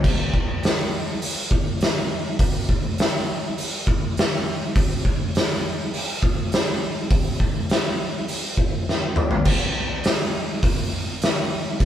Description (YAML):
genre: metal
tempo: 102 BPM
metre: 4/4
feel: straight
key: none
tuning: none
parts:
  - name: oversized low-tuned drum kit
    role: drums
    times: 0.0-11.8 s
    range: crash cymbal, hi-hat, kick drum, snare drum, toms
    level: -20 LUFS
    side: equal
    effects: none
room: light reverb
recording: band playing live in one room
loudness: -20 LUFS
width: side -10 dB against mid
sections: 0.0-9.5 A section; 9.5-11.8 B section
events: drum fill 8.9-9.5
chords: none